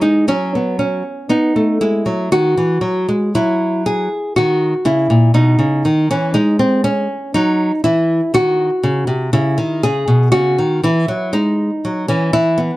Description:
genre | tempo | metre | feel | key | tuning
classical, baroque-style dance for nylon-string guitar | 60 BPM | 3/4 | rubato | C# minor from 6.3 s | A4 = 440 Hz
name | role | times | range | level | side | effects
nylon-string guitar | solo | 0.0-12.8 s | A#2 to G#4 | -13 LUFS | equal | none
room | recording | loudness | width
light reverb | dark, warm production | -13 LUFS | side -18 dB against mid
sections
0.0-12.8 A section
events
none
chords
0.3 B/F#; 3.3 N.C.; 5.3 B; 6.3 G#7; 9.3 C#m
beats
| 0.29 1.31 2.33 | 3.33 4.35 5.35 | 6.33 7.34 8.33 | 9.32 10.32 11.32 | 12.34

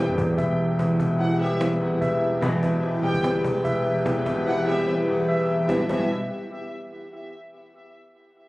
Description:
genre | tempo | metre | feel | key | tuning
hip hop, trap | 147 BPM | 4/4 | half-time | E minor | A4 = 444 Hz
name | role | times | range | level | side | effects
felt-muted upright piano | accompaniment | 0.0-6.1 s | E2 to B3 | -25 LUFS | equal | low-pass filter
airy breathy pad | sustained chords | 0.0-5.9 s | E3 to G4 | -33 LUFS | equal | chorus, phaser
mellow tine electric piano | arpeggios | 0.0-6.1 s | E3 to E5 | -26 LUFS | equal | medium stereo tremolo, low-pass filter, ping-pong delay
long sustained 808-style bass | bass | 0.0-6.3 s | D#1 to G2 | -33 LUFS | equal | none
cajon | drums | 0.2-6.0 s | none | -35 LUFS | equal | none
warm studio violin section | second line | 1.2-6.1 s | E5 to G5 | -35 LUFS | equal | ping-pong delay
dark chamber string section | stabs | 2.4-2.6, 5.7-6.1 s | B1 to E3 | -28 LUFS | equal | none
room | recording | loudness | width
moderate concert hall reverb, RT60 1.8 s, studio ambience | recorded on a phone in the room, studio reverb, compression | -21 LUFS | side -19 dB against mid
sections
0.0-5.7 A section; 5.7-7.3 B section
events
drums muted 4.9-5.7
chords
0.0 Em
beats
0.38 | 0.79 1.20 1.61 2.02 | 2.42 2.83 3.24 3.65 | 4.06 4.47 4.87 5.28 | 5.69 6.10

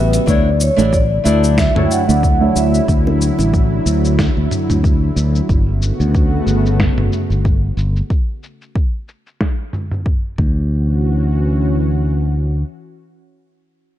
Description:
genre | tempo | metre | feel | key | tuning
sunset chillout | 92 BPM | 4/4 | swing 56% on 16ths | D major | A4 = 439 Hz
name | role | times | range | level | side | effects
vibraphone with soft mallets | melody | 0.0-2.9 s | B4 to G5 | -20 LUFS | equal | tape echo
flamenco guitar | accompaniment | 0.0-2.9 s | A3 to E5 | -19 LUFS | moving between left 2 dB and right 5 dB | auto-pan, low-pass filter, tape echo
lush unison pad | sustained chords | 0.0-13.5 s | C#3 to F#5 | -21 LUFS | right 1 dB | chorus, vintage 12-bit sampler grit
modern bright fingered electric bass | bass | 0.0-12.6 s | G1 to D2 | -16 LUFS | equal | none
dusty soul sampler-style drum kit | drums | 0.1-10.2 s | hi-hat, shaker, snare drum, toms | -22 LUFS | equal | overdrive, low-pass filter on hats, low-pass filter on perc, low-pass filter on snare, low-pass filter on toms
electronic kick drum | drums | 0.3-10.5 s | none | -16 LUFS | equal | none
bongos | percussion | 0.8-3.5 s | none | -26 LUFS | equal | none
room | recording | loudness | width
light reverb | dark, warm production | -13 LUFS | side -12 dB against mid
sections
0.3-10.7 A section; 10.7-13.3 B section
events
break 0.0; filter sweep on drum 0.3-10.7; filter sweep on fingered electric bass 0.3-8.1; filter sweep on nylon-string guitar 0.3-2.9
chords
0.3 Dmaj9; 5.5 Gmaj9#11; 10.4 Dmaj9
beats
| 0.27 0.93 1.58 2.23 | 2.88 3.54 4.19 4.84 | 5.49 6.14 6.79 7.45 | 8.10 8.75 9.40 10.06 | 10.71 11.36 12.01 12.66

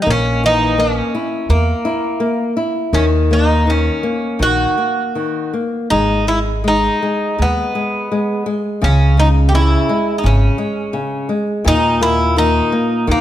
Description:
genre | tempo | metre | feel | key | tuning
fado-style ballad | 83 BPM | 4/4 | rubato | G# minor | A4 = 440 Hz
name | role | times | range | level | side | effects
Greek bouzouki | melody | 0.0-13.2 s | A#3 to G4 | -18 LUFS | equal | none
nylon-string guitar | accompaniment | 0.0-13.2 s | A#2 to E4 | -18 LUFS | left 2 dB | none
upright bass | bass | 0.1-13.2 s | G#1 to E2 | -15 LUFS | right 1 dB | none
room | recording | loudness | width
moderate recital hall reverb, RT60 1.8 s | none | -14 LUFS | side -12 dB against mid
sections
0.0-13.2 A section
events
none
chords
0.1 A#dim; 2.9 D#m7; 5.9 G#m; 8.8 C#m; 11.7 D#5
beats
| 0.07 0.78 1.49 2.20 | 2.93 3.67 4.40 5.15 | 5.91 6.65 7.38 8.11 | 8.83 9.54 10.24 10.95 | 11.67 12.37 13.10

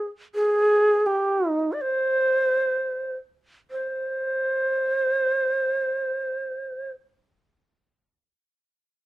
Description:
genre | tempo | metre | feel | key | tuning
japanese traditional, Japanese chamber music | free time | none | none | unclear | A4 = 441 Hz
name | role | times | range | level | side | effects
breathy bright long shakuhachi | solo | 0.0-6.9 s | G4 to D5 | -22 LUFS | right 1 dB | none
room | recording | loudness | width
light reverb | dark, warm production | -21 LUFS | side -16 dB against mid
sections
0.0-3.7 A section; 3.7-8.0 B section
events
slowing down 0.3-3.7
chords
none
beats
free time

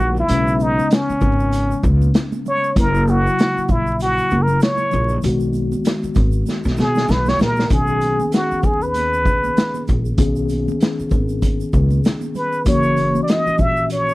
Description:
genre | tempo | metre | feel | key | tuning
hip hop, jazz-hop | 97 BPM | 4/4 | swing 59% on 16ths | B major | A4 = 443 Hz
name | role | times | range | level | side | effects
trumpet with plunger mute | melody | 0.0-14.1 s | C#4 to E5 | -19 LUFS | equal | none
mellow tine electric piano | accompaniment | 0.0-14.1 s | C#3 to G#4 | -23 LUFS | left 3 dB | medium stereo tremolo
upright bass | bass | 0.0-14.1 s | F#1 to B2 | -20 LUFS | equal | none
congas and tube shaker | percussion | 0.0-14.1 s | none | -32 LUFS | right 7 dB | none
vintage drum kit | drums | 0.3-14.1 s | hi-hat, kick drum, shaker, snare drum | -19 LUFS | equal | none
room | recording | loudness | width
little or no reverb | vinyl crackle | -15 LUFS | side -19 dB against mid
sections
0.0-7.7 A section; 7.7-14.1 B section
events
muted trumpet solo 0.0-7.7; drum fill 6.5-7.7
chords
0.0 Bsus2; 2.8 F#7; 5.2 B6; 7.7 B69; 12.7 F#7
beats
| 0.29 0.91 1.52 2.14 | 2.76 3.38 4.00 4.62 | 5.24 5.85 6.47 7.09 | 7.71 8.33 8.95 9.56 | 10.18 10.80 11.42 12.04 | 12.66 13.28 13.89

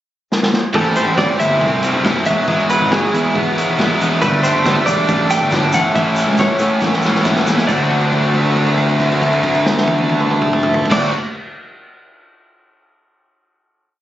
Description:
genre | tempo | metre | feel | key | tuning
indie rock | 138 BPM | 4/4 | straight | D mixolydian | A4 = 438 Hz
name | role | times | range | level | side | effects
vintage drum kit | drums | 0.3-11.0 s | crash cymbal, hi-hat, kick drum, snare drum, toms | -20 LUFS | equal | none
high-gain distorted guitar | riff | 0.7-11.1 s | E3 to F#4 | -19 LUFS | right 4 dB | distortion, analog chorus, slapback echo
overdriven semi-hollow guitar | riff | 0.7-11.1 s | A2 to G4 | -19 LUFS | left 4 dB | none
fuzz picked electric bass | bass | 0.7-11.1 s | E1 to A2 | -19 LUFS | equal | overdrive
semi-hollow electric guitar | melody | 0.8-11.1 s | G#4 to G5 | -20 LUFS | right 1 dB | wide subtle chorus
tube shaker | percussion | 4.2-7.9 s | none | -35 LUFS | left 2 dB | none
room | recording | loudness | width
light reverb | recorded on a phone in the room, club reverb, nothing above 7.8 kHz | -13 LUFS | side -13 dB against mid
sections
0.0-0.7 pickup bar; 0.7-7.7 pre-chorus; 7.7-11.2 final chord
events
drum fill 0.3-0.7, 6.8-7.7; held note 7.7-10.9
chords
0.0 N.C.; 0.7 Am7; 2.3 Eadd9; 4.2 Gsus2; 5.7 Aadd9; 7.7 D7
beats
0.30 | 0.74 1.18 1.61 2.05 | 2.49 2.92 3.36 3.79 | 4.22 4.66 5.09 5.52 | 5.96 6.39 6.82 7.26 | 7.69 8.12 8.56 8.99 | 9.43 9.86 10.30 10.74

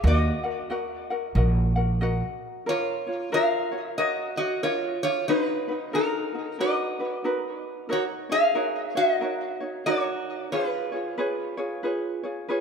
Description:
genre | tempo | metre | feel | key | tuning
Hawaiian | 92 BPM | 4/4 | swing 61% on 8ths | F# major | A4 = 438 Hz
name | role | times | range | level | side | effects
metal-body resonator slide guitar | melody | 0.0-11.5 s | D#4 to E#5 | -26 LUFS | equal | tape echo
ukulele | accompaniment | 0.0-12.6 s | D#4 to Gb5 | -30 LUFS | equal | none
upright bass | bass | 0.0-2.2 s | Bb1 to Eb2 | -21 LUFS | right 1 dB | none
room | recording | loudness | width
moderate concert hall reverb, RT60 1.8 s | none | -24 LUFS | side -6 dB against mid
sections
0.0-2.7 A section; 2.7-12.6 B section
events
none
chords
0.0 Ebm; 2.7 F#maj7; 5.3 Bmaj7/D#; 7.9 D#m7; 10.5 C#7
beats
| 0.05 0.70 1.36 2.01 | 2.67 3.32 3.97 4.63 | 5.28 5.93 6.59 7.24 | 7.90 8.55 9.21 9.86 | 10.51 11.17 11.82 12.48

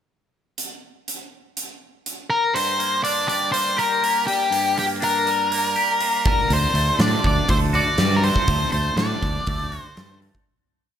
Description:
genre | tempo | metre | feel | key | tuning
quiet-loud alternative rock | 121 BPM | 4/4 | straight | G harmonic minor | A4 = 440 Hz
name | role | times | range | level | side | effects
huge arena drum kit | drums | 0.6-10.5 s | hi-hat, kick drum, snare drum | -25 LUFS | right 1 dB | none
octave-fuzz lead guitar | melody | 2.3-10.2 s | G4 to D5 | -21 LUFS | left 2 dB | distortion, slapback echo
twangy electric guitar | arpeggios | 2.5-10.5 s | G2 to G4 | -26 LUFS | right 1 dB | lush chorus, slapback echo, digital delay
fuzz fingered electric bass | bass | 6.5-10.3 s | D2 to A2 | -22 LUFS | equal | overdrive
room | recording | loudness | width
moderate lush hall reverb, RT60 1.6 s | big arena sound | -18 LUFS | side -9 dB against mid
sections
0.6-2.5 pickup bar; 2.5-10.5 verse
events
fade-out 8.5-10.5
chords
0.6 N.C.; 2.5 Gm; 6.2 D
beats
| 0.57 1.06 1.56 2.05 | 2.55 3.04 3.53 4.03 | 4.52 5.01 5.51 6.00 | 6.50 6.99 7.49 7.98 | 8.48 8.98 9.47 9.97

